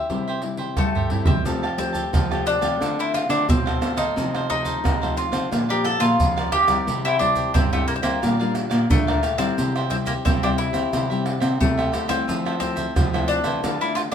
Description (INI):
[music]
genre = samba and choro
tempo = 89 BPM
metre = 4/4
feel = straight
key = F major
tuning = A4 = 440 Hz
[part]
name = mandolin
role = melody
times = 0.0-14.1 s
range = A3 to E5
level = -24 LUFS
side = left 1 dB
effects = none
[part]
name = cavaquinho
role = accompaniment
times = 0.0-14.1 s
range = D4 to A5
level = -30 LUFS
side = right 2 dB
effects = none
[part]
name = nylon-string guitar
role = accompaniment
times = 0.0-14.1 s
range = F2 to G4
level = -29 LUFS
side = left 5 dB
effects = none
[part]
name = surdo, pandeiro, tamborim and maracas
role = percussion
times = 0.1-14.1 s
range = none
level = -24 LUFS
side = right 2 dB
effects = none
[part]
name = nylon-string guitar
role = bass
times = 1.5-14.1 s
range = Bb2 to C4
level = -26 LUFS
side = equal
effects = none
[sound]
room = moderate studio reverb, RT60 0.5 s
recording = minimal, uncompressed stereo recording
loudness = -19 LUFS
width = side -8 dB against mid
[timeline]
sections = 0.0-1.5 A section; 1.5-14.1 B section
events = drum fill 0.8-1.5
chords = 0.0 C; 1.5 Fadd9; 2.8 Dm7; 4.2 F7/C; 5.5 Bb; 6.9 C; 8.2 Gm7/Bb; 9.6 C; 12.3 Fmaj7; 13.6 Dm